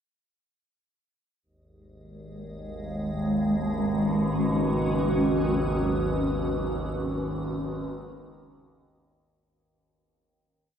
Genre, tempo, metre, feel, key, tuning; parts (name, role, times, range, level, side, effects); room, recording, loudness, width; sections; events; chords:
dark ambient drone; free time; G# minor; A4 = 440 Hz
granular cloud pad; sustained chords; 2.7-9.4 s; G#3 to B4; -26 LUFS; equal; built-in reverb
overtone-sweeping drone; drone; 2.2-9.5 s; G#1 to D#2; -30 LUFS; equal; chorus, built-in reverb
icy glass pad; texture; 2.7-9.5 s; D#5; -42 LUFS; right 7 dB; chorus, built-in reverb
wet cathedral reverb, RT60 5.2 s; dark, warm production; -24 LUFS; side -8 dB against mid
1.4-9.4 A section
fade-in on synth drone 1.4-9.4; fade-in on ambient pad 1.4-9.4; fade-out 5.4-9.4
1.4 G#m